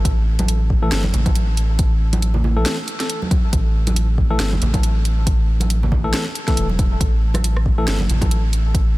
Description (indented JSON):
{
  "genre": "deep dubstep",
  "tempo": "138 BPM",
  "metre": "4/4",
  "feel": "swing 56% on 16ths, half-time",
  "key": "unclear",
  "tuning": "A4 = 440 Hz",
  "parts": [
    { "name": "soft dub sub bass", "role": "bass", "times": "0.0-9.0 s", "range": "E1 to Bb1", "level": "-18 LUFS", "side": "equal", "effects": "none" },
    { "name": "electronic kick drum", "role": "drums", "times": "0.0-8.8 s", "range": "none", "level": "-18 LUFS", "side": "equal", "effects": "studio ambience" },
    { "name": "garage drum kit", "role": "drums", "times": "0.1-8.8 s", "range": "hi-hat, rim click, snare drum", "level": "-27 LUFS", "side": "right 1 dB", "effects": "overdrive, studio ambience" },
    { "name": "congas", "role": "percussion", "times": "0.4-8.3 s", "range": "none", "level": "-27 LUFS", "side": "right 2 dB", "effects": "dub echo" },
    { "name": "bright tine electric piano", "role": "stabs", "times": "0.8-8.0 s", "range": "E3 to A4", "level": "-27 LUFS", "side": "left 2 dB", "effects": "dub echo" }
  ],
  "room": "digital ambience",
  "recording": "dense, heavily limited modern master",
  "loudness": "-16 LUFS",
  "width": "side -19 dB against mid",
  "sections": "0.0-9.0 A section",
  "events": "none",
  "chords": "0.0 A5",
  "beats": "| 0.05 0.48 0.92 1.35 | 1.79 2.22 2.66 3.09 | 3.53 3.96 4.40 4.83 | 5.27 5.70 6.14 6.57 | 7.01 7.44 7.88 8.31 | 8.75"
}